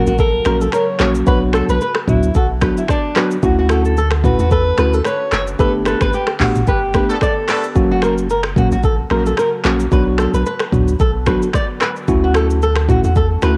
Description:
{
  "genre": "afrobeats",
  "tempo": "111 BPM",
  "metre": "4/4",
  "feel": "swing 55% on 16ths",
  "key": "B minor",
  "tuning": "A4 = 441 Hz",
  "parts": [
    { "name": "breathy alto saxophone", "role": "melody", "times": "0.0-7.6 s", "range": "D4 to C#5", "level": "-24 LUFS", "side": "equal", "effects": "cassette tape, tape echo" },
    { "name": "mellow tine electric piano", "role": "accompaniment", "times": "0.0-13.6 s", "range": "F#3 to G4", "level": "-20 LUFS", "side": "equal", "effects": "cassette tape" },
    { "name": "glassy FM pad", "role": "sustained chords", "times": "0.3-13.6 s", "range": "C#3 to G4", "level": "-35 LUFS", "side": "equal", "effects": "none" },
    { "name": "flamenco guitar", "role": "riff", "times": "0.0-13.5 s", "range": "F#4 to D5", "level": "-23 LUFS", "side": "equal", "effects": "cassette tape" },
    { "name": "punchy sub bass", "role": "bass", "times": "0.0-13.6 s", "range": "F#1 to E2", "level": "-21 LUFS", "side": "equal", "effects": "none" },
    { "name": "afro-pop drum kit", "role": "drums", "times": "0.1-13.6 s", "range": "finger snaps, handclaps, hi-hat, kick drum, rim click, shaker, toms", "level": "-21 LUFS", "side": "equal", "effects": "cassette tape" },
    { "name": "warm horn section", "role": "second line", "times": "7.1-7.7 s", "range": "A3 to A4", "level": "-27 LUFS", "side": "equal", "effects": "cassette tape" }
  ],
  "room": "light reverb",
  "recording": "home recording on cassette",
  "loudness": "-16 LUFS",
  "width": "mono",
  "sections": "0.0-13.6 A section",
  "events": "band accent 5.6-7.8",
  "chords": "0.0 F#; 1.3 Bm; 3.4 Dmaj7; 5.6 Gadd9; 7.8 F#; 9.9 Bm; 12.1 Dmaj7"
}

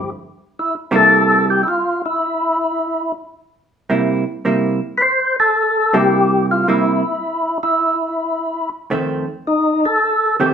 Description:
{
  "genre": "jazz",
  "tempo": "108 BPM",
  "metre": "4/4",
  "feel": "swing 67% on 8ths",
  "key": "C mixolydian",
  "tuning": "A4 = 439 Hz",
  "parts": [
    { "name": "percussive tonewheel organ", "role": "melody", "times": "0.0-10.5 s", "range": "Eb4 to C5", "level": "-15 LUFS", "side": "left 1 dB", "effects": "overdrive, chorus vibrato, slow rotary speaker" },
    { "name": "vintage hollow-body jazz guitar", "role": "accompaniment", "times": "0.9-10.5 s", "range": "F2 to E4", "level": "-17 LUFS", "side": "right 3 dB", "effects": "none" }
  ],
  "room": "wet studio reverb, RT60 0.9 s",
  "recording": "band playing live in one room",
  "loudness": "-15 LUFS",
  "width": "side -7 dB against mid",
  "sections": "0.0-10.5 A section",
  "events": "none",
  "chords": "0.0 C7; 8.9 F7"
}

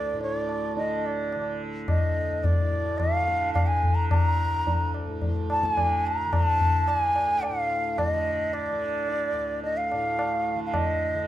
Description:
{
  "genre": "indian classical, Hindustani",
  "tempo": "108 BPM",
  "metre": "4/4",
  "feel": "straight",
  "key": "D raga todi",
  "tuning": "A4 = 438 Hz",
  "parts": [
    { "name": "breathy mellow bansuri", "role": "melody", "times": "0.0-11.3 s", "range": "D5 to Bb5+22c", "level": "-26 LUFS", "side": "equal", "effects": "none" },
    { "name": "tanpura", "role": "drone", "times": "0.0-11.3 s", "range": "D2 to D3", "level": "-32 LUFS", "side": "right 2 dB", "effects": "none" },
    { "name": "tabla", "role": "percussion", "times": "0.2-10.9 s", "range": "none", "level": "-27 LUFS", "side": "left 1 dB", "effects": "none" }
  ],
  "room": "light reverb",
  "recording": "none",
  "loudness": "-23 LUFS",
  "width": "side -13 dB against mid",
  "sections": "0.0-11.3 A section",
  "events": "none",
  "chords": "none"
}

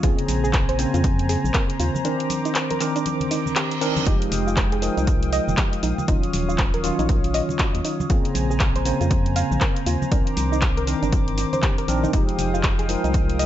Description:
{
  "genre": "deep house",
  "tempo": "119 BPM",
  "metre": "4/4",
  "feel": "swing 61% on 16ths",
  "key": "F minor",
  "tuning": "A4 = 443 Hz",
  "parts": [
    { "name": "warm analog pad", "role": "sustained chords", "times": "0.0-13.5 s", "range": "Ab3 to Eb6", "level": "-30 LUFS", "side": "equal", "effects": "chorus, sidechain pumping" },
    { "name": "soft round pluck", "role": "arpeggios", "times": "0.0-13.5 s", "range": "D4 to F5", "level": "-30 LUFS", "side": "right 2 dB", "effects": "chorus, sidechain pumping, ping-pong delay" },
    { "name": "tine electric piano", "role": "stabs", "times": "0.0-13.5 s", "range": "Db3 to C5", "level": "-25 LUFS", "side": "equal", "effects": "fast stereo tremolo, sidechain pumping, ping-pong delay" },
    { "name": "organ-like FM bass", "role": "bass", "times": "0.0-13.5 s", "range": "Eb1 to F2", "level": "-25 LUFS", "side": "equal", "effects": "tube saturation, sidechain pumping" },
    { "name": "electronic kick drum", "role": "drums", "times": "0.0-13.3 s", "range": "none", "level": "-21 LUFS", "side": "equal", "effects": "studio ambience" },
    { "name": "house drum kit", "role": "drums", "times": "0.0-13.5 s", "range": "handclaps, hi-hat, shaker", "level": "-28 LUFS", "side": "equal", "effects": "studio ambience" },
    { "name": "congas and bongos", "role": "percussion", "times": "0.3-13.3 s", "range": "none", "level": "-33 LUFS", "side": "right 1 dB", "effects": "none" },
    { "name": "reverse cymbal", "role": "sound effects", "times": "3.3-4.1 s", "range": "none", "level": "-31 LUFS", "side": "right 6 dB", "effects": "none" }
  ],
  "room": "light reverb",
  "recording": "nothing above 7.9 kHz",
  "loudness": "-19 LUFS",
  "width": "side -12 dB against mid",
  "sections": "0.0-13.5 A section",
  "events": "reverse cymbal 3.3-4.1",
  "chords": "0.0 Bbm9; 2.0 Cm9; 4.1 Fm9; 6.1 Ebm9; 8.1 Bbm9; 10.1 Cm9; 12.1 Fm9"
}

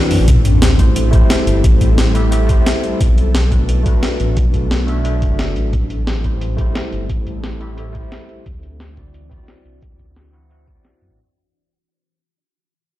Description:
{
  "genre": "liquid drum and bass",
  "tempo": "176 BPM",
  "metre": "4/4",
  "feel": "straight",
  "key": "A dorian",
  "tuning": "A4 = 436 Hz",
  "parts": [
    { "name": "overdriven tine electric piano", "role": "accompaniment", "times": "0.0-11.2 s", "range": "E3 to F#5", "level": "-23 LUFS", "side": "equal", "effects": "phaser, ping-pong delay" },
    { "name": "ethereal airy pad", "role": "sustained chords", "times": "0.0-11.2 s", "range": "E3 to A4", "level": "-25 LUFS", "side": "left 1 dB", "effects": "ensemble chorus, built-in reverb, sidechain pumping" },
    { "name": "dark detuned saw bass", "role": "bass", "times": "0.1-11.2 s", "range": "F#1 to F#2", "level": "-17 LUFS", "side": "equal", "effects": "none" },
    { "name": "breakbeat sampler-style drum kit", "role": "drums", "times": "0.1-11.1 s", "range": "hi-hat, snare drum", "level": "-21 LUFS", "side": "equal", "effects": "low-pass filter on hats, low-pass filter on snare" },
    { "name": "electronic kick drum", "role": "drums", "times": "0.3-10.7 s", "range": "none", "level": "-15 LUFS", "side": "equal", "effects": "none" },
    { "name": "sub drop", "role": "sound effects", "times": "0.3-1.6 s", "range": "none", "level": "-19 LUFS", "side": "equal", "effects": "none" }
  ],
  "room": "digital ambience",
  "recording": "played on a big sound system in a bare room, stone room reverb",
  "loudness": "-12 LUFS",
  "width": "side -15 dB against mid",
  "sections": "0.3-11.2 A section",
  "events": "fade-out 0.3-11.2; impact 0.3-1.6; filter sweep on drum 0.3-11.2; filter sweep on ambient pad 0.3-11.2",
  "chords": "0.3 Am7; 3.0 Bm7; 5.7 Am7; 8.5 D9"
}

